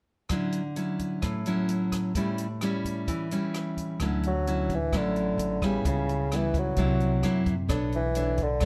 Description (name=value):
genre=bossa nova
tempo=130 BPM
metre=4/4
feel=straight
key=D major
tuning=A4 = 441 Hz
part: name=nylon-string guitar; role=accompaniment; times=0.3-8.7 s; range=A2 to C#5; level=-31 LUFS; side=equal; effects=none
part: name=compact cocktail drum kit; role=drums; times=0.3-8.7 s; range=hi-hat, kick drum, rim click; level=-37 LUFS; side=equal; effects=none
part: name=upright bass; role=bass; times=4.0-8.7 s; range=A1 to F#2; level=-32 LUFS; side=equal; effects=none
part: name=mellow bassoon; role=melody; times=4.3-8.7 s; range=C#3 to F#3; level=-32 LUFS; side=equal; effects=none
room=moderate studio reverb, RT60 0.7 s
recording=lossy compression artefacts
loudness=-28 LUFS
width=mono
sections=0.3-4.0 A section; 4.0-8.7 B section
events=none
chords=0.3 Dmaj9; 2.2 A7; 4.0 Dmaj9; 5.8 C#m7b5; 6.8 C7#11; 7.7 Bm9